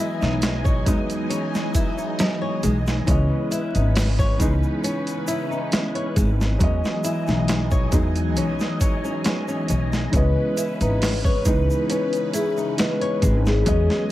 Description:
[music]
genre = trip hop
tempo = 68 BPM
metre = 4/4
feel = straight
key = C# minor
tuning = A4 = 440 Hz
[part]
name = felt-muted upright piano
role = accompaniment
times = 0.0-14.1 s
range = E3 to D#5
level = -27 LUFS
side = right 1 dB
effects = tremolo, tape echo
[part]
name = string machine, cellos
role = sustained chords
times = 0.0-14.1 s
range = E3 to G#5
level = -29 LUFS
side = left 1 dB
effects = phaser, ensemble chorus, vintage 12-bit sampler grit
[part]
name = flamenco guitar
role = arpeggios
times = 0.0-14.1 s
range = G#3 to C#5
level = -29 LUFS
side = left 2 dB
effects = vintage 12-bit sampler grit, tape echo
[part]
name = upright bass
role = bass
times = 0.2-13.9 s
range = G#1 to E2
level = -22 LUFS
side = equal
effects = none
[part]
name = dusty soul sampler-style drum kit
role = drums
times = 0.2-14.1 s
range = hi-hat, kick drum, snare drum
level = -23 LUFS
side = equal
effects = overdrive
[part]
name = tube shaker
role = percussion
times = 0.2-13.8 s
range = none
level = -38 LUFS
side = right 4 dB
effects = none
[part]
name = pure breathy sine lead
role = melody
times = 10.1-14.0 s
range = G#4 to B4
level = -25 LUFS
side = left 2 dB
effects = chorus, tape echo
[sound]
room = light reverb, small room reverb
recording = vinyl crackle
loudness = -19 LUFS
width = side -15 dB against mid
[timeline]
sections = 0.0-14.1 A section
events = none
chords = 0.0 Emaj7; 3.1 C#m7; 6.6 Emaj7; 10.1 C#m7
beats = 0.42 1.31 2.19 | 3.07 3.95 4.84 5.72 | 6.60 7.48 8.37 9.25 | 10.13 11.01 11.89 12.78 | 13.66

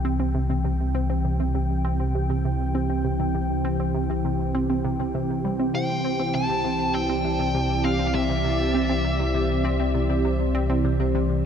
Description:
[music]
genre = ambient, sequencer-driven space music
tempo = 100 BPM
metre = 4/4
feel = straight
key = C major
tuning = A4 = 440 Hz
[part]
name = sweeping resonant pad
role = sustained chords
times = 0.0-11.5 s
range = C3 to G5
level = -26 LUFS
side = right 1 dB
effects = chorus
[part]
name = analog pluck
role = riff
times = 0.0-11.3 s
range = C3 to C4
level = -29 LUFS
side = right 1 dB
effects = chorus, tape echo
[part]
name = warm sub bass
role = bass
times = 0.0-11.5 s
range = C2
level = -27 LUFS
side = left 1 dB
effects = none
[part]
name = dark smooth lead guitar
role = melody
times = 5.7-9.9 s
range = E5 to A5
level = -28 LUFS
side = left 1 dB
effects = overdrive, tape echo
[part]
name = vibraphone with medium mallets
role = arpeggios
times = 5.7-11.2 s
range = C4 to C5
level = -30 LUFS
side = left 1 dB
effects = auto-pan, tape echo
[sound]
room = wet huge ambient reverb, RT60 7.8 s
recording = in a vast, echoing space, cassette tape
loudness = -21 LUFS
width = side -8 dB against mid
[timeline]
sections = 0.0-11.5 A section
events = filter sweep on synth arpeggio sound 0.0-11.5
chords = 0.0 C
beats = 0.35 | 0.95 1.55 2.15 2.75 | 3.35 3.95 4.55 5.15 | 5.75 6.35 6.95 7.55 | 8.15 8.75 9.35 9.95 | 10.55 11.15

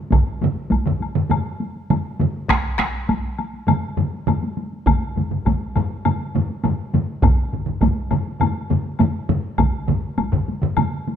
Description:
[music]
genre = japanese traditional, taiko drum ensemble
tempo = 101 BPM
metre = 4/4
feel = straight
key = none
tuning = none
[part]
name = taiko ensemble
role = percussion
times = 0.1-11.2 s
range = none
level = -24 LUFS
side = equal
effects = none
[part]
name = taiko ensemble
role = percussion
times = 0.1-10.9 s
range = none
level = -25 LUFS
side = left 5 dB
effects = none
[part]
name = taiko ensemble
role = percussion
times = 0.1-10.9 s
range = none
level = -24 LUFS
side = right 5 dB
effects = none
[part]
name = taiko ensemble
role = percussion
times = 0.1-10.3 s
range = none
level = -21 LUFS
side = right 1 dB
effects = none
[part]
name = woodblock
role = percussion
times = 0.1-10.9 s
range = none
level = -28 LUFS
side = left 7 dB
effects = none
[sound]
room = moderate recital hall reverb, RT60 1.6 s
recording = close, detailed microphones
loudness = -19 LUFS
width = side -9 dB against mid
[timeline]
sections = 0.0-11.2 A section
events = none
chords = none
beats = | 0.12 0.72 1.31 1.90 | 2.50 3.09 3.68 4.27 | 4.87 5.46 6.05 6.64 | 7.23 7.82 8.41 9.00 | 9.59 10.18 10.77

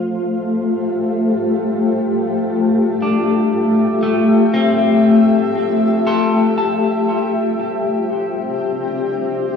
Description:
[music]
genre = ambient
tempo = free time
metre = none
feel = none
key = unclear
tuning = A4 = 443 Hz
[part]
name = granular cloud pad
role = sustained chords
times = 0.0-9.6 s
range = A3 to E5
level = -15 LUFS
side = left 2 dB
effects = built-in reverb
[part]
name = electric guitar at the edge of break-up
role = arpeggios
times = 3.0-9.6 s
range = A3 to C6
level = -20 LUFS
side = left 1 dB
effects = wide subtle chorus, tape echo
[sound]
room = wet lush hall reverb, RT60 2.9 s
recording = worn, warbling old tape, cassette tape, warbly pitch drift, studio reverb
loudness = -14 LUFS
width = side -6 dB against mid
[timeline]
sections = 0.0-9.6 A section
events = filter sweep on ambient pad 0.0-9.6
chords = 0.0 Fmaj9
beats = free time

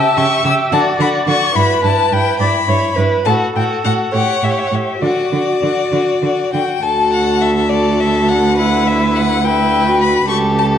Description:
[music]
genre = quick classical-period movement for string quartet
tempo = 65-72 BPM (dotted quarters)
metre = 6/8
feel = rubato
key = D major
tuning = A4 = 439 Hz
[part]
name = clear violin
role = melody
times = 0.0-10.7 s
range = D5 to E6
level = -18 LUFS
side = left 7 dB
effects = none
[part]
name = rich violin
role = second line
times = 0.0-10.8 s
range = E4 to B4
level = -19 LUFS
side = left 2 dB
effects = none
[part]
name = rich viola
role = accompaniment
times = 0.0-10.8 s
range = E4 to E5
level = -18 LUFS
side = right 2 dB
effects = none
[part]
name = rich cello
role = bass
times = 0.2-10.8 s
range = C#2 to D3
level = -18 LUFS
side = right 3 dB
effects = none
[sound]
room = wet recital hall reverb, RT60 1.6 s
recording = worn, warbling old tape, cassette tape, warbly pitch drift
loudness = -12 LUFS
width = side -9 dB against mid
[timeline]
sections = 0.0-6.8 A section; 6.8-10.8 B section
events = none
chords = 0.0 C#dim; 0.7 D; 1.6 Em/G; 3.3 F#m/A; 4.1 A7; 5.0 D; 8.6 Em7/D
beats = 0.73 | 1.56 2.40 | 3.25 4.13 | 5.02 5.91 | 6.82 7.70 | 8.57 9.44 | 10.30

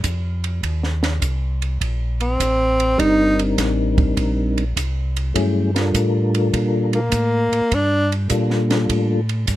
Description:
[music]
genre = soul jazz organ trio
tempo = 102 BPM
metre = 4/4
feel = swing 68% on 8ths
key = G minor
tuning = A4 = 441 Hz
[part]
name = mellow tonewheel organ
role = bass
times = 0.0-9.6 s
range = G1 to Bb2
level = -21 LUFS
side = equal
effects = slow rotary speaker
[part]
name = compact cocktail drum kit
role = drums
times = 0.0-9.6 s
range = hi-hat, kick drum, ride cymbal, snare drum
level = -23 LUFS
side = right 2 dB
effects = none
[part]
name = breathy tenor saxophone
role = melody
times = 2.2-3.4, 6.9-8.1 s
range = Bb3 to Eb4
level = -18 LUFS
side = equal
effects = none
[part]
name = percussive tonewheel organ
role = melody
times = 3.0-9.2 s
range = F#3 to Bb4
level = -20 LUFS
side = left 2 dB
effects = slow rotary speaker, chorus vibrato
[sound]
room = little or no reverb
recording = close, detailed microphones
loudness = -17 LUFS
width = side -14 dB against mid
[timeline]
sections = 0.0-9.6 A section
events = tenor saxophone solo 0.0-9.6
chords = 0.0 N.C.; 0.6 Cm7; 5.3 Gm7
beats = 0.04 | 0.63 1.22 1.81 2.40 | 2.99 3.58 4.17 4.75 | 5.34 5.93 6.52 7.11 | 7.70 8.29 8.88 9.47

